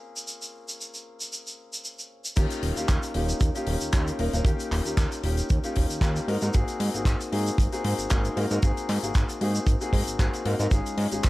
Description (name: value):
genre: nu-disco, nu disco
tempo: 115 BPM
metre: 4/4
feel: swing 55% on 16ths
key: unclear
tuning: A4 = 436 Hz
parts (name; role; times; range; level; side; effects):
- warm concert grand piano; accompaniment; 0.0-11.3 s; Ab3 to Bb4; -30 LUFS; left 2 dB; tape echo
- damped 70s drum kit; drums; 0.2-11.3 s; crash cymbal, handclaps, hi-hat, shaker; -33 LUFS; left 1 dB; none
- fat analog bass; bass; 2.4-11.3 s; Eb1 to Ab2; -27 LUFS; equal; none
- kick drum; drums; 2.4-11.3 s; none; -23 LUFS; equal; none
room: small room ambience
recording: none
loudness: -24 LUFS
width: side -18 dB against mid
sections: 0.0-2.4 A section; 2.4-11.3 B section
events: filter sweep on grand piano 0.0-2.4; drop 2.4-11.3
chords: 0.0 Bbm7; 2.4 Eb7; 6.3 Ab7; 10.7 Dbadd9/Ab